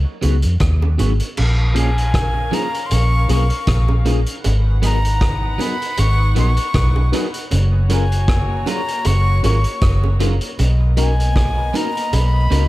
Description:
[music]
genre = lovers rock reggae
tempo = 78 BPM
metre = 4/4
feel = swing 56% on 16ths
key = unclear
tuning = A4 = 440 Hz
[part]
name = vintage muted fingered electric bass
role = bass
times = 0.0-12.7 s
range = F#1 to E#2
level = -16 LUFS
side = equal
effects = none
[part]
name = mellow tine electric piano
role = accompaniment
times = 0.2-12.7 s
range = A#3 to A#4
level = -27 LUFS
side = left 5 dB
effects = medium stereo tremolo
[part]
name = electric guitar at the edge of break-up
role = stabs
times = 0.2-12.6 s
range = E#3 to A#4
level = -29 LUFS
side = right 5 dB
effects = analog chorus, dub echo
[part]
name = vintage drum kit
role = drums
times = 0.2-12.7 s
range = crash cymbal, hi-hat, kick drum, rim click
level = -22 LUFS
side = equal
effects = none
[part]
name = bongos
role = percussion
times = 0.2-12.7 s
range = none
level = -30 LUFS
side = right 6 dB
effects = none
[part]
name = dark chamber string section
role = second line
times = 1.4-12.7 s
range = A#3 to F#5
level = -30 LUFS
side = left 1 dB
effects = dub echo
[part]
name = breathy concert flute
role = melody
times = 1.8-12.7 s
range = G#5 to C#6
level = -24 LUFS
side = left 2 dB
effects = tape echo
[sound]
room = studio reverb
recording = none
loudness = -15 LUFS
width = side -17 dB against mid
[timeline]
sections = 0.0-1.4 A section; 1.4-12.7 B section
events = none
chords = 0.0 C#7sus4; 1.4 A#m7; 4.4 G#m7; 7.5 F#maj7; 10.6 Bmaj7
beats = 0.61 | 1.37 2.14 2.91 3.68 | 4.45 5.21 5.98 6.75 | 7.52 8.29 9.05 9.82 | 10.59 11.36 12.12

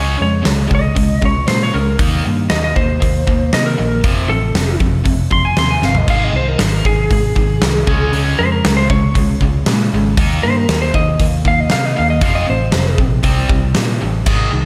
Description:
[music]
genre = hard rock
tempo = 117 BPM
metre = 4/4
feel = straight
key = unclear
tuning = A4 = 440 Hz
[part]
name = lightly driven lead guitar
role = melody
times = 0.0-13.0 s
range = Ab4 to C6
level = -22 LUFS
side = equal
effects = slapback echo
[part]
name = overdriven electric guitar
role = riff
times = 0.0-14.7 s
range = F2 to Eb4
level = -21 LUFS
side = equal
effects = spring reverb
[part]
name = picked electric bass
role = bass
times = 0.0-14.7 s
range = F1 to C3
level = -20 LUFS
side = equal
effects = none
[part]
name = big rock drum kit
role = drums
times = 0.5-14.4 s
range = crash cymbal, hi-hat, kick drum, snare drum, toms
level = -20 LUFS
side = equal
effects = none
[sound]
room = light reverb, studio reverb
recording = none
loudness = -15 LUFS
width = mono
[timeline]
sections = 0.0-14.7 A section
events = lead electric guitar solo 0.0-14.7; drum fill 5.8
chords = 0.0 Db5; 2.0 Eb5; 4.0 F; 6.1 Ab; 7.9 Db5; 10.2 Eb5; 12.2 F; 13.2 C5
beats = 0.45 0.96 1.48 | 1.99 2.50 3.01 3.52 | 4.03 4.55 5.06 5.57 | 6.08 6.59 7.10 7.61 | 8.12 8.63 9.15 9.66 | 10.17 10.68 11.19 11.71 | 12.22 12.73 13.24 13.76 | 14.27

